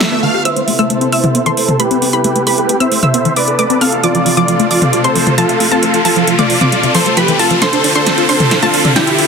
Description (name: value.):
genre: uplifting trance.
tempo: 134 BPM.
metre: 4/4.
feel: straight.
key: A minor.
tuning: A4 = 441 Hz.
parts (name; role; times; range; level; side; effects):
big supersaw lead; melody; 0.0-9.3 s; E4 to F5; -15 LUFS; right 1 dB; low-pass filter, digital delay.
lush unison pad; sustained chords; 0.0-9.3 s; C3 to B4; -19 LUFS; left 2 dB; chorus.
tight sequenced synth; arpeggios; 0.0-9.2 s; C3 to D5; -17 LUFS; left 2 dB; chorus, dub echo.
big-room dance drum kit; drums; 0.0-9.3 s; hi-hat, snare drum, toms; -16 LUFS; right 1 dB; none.
swell and riser; sound effects; 0.0-9.3 s; none; -20 LUFS; equal; none.
analog pluck; second line; 0.5-9.3 s; G5 to F6; -20 LUFS; left 1 dB; chorus, dub echo.
room: light reverb.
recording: dense, heavily limited modern master.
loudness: -10 LUFS.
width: side -6 dB against mid.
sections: 0.5-9.3 A section.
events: swell 0.0-0.5; build-up 0.5-9.3; riser 0.5-9.3; filter sweep on supersaw synth 0.5-9.3; filter sweep on synth arpeggio sound 0.5-9.3; drum fill 7.6-9.3.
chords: 0.5 Amadd9; 4.0 F; 7.6 Dm7.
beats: 0.01 | 0.45 0.90 1.35 1.80 | 2.25 2.69 3.14 3.59 | 4.04 4.48 4.93 5.38 | 5.83 6.28 6.72 7.17 | 7.62 8.07 8.51 8.96.